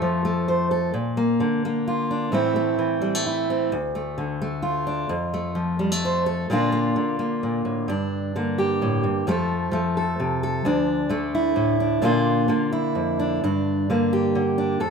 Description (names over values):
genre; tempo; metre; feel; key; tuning
folk, solo fingerstyle acoustic guitar; 130 BPM; 3/4; straight; unclear; A4 = 440 Hz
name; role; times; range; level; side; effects
fingerpicked steel-string acoustic guitar; solo; 0.0-14.9 s; D2 to C5; -21 LUFS; equal; none
room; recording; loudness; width
moderate large studio reverb, RT60 1.2 s; minimal, uncompressed stereo recording; -21 LUFS; side -5 dB against mid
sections
0.0-7.9 A section; 7.9-14.9 B section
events
none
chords
0.0 F; 0.9 Bb; 2.3 Am; 3.7 Dm; 5.1 F; 6.5 Bb; 7.9 Gm; 9.3 F; 10.7 D5; 12.0 Bb; 13.4 Gm